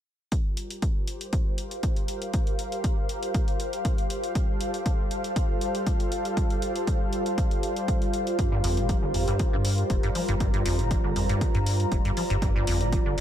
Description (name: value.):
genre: acid house.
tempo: 119 BPM.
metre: 4/4.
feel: straight.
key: G minor.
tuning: A4 = 440 Hz.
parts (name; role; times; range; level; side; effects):
warm analog pad; sustained chords; 0.3-13.2 s; G3 to D5; -32 LUFS; right 1 dB; lush chorus, sidechain pumping.
electronic hi-hat; drums; 0.3-13.2 s; none; -37 LUFS; left 2 dB; none.
electronic kick drum; drums; 0.3-13.0 s; none; -26 LUFS; equal; none.
ethereal airy pad; texture; 0.8-13.2 s; G4 to Bb5; -32 LUFS; equal; ensemble chorus, built-in reverb, sidechain pumping.
deep acid bass; riff; 8.4-13.2 s; F2 to G3; -28 LUFS; equal; wide subtle chorus, sidechain pumping, dub echo.
round analog bass; bass; 8.6-13.2 s; F1 to G2; -28 LUFS; equal; sidechain pumping.
room: digital ambience.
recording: echo-heavy mix.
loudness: -24 LUFS.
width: side -10 dB against mid.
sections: 0.3-13.2 A section.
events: none.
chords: 0.3 Gm7.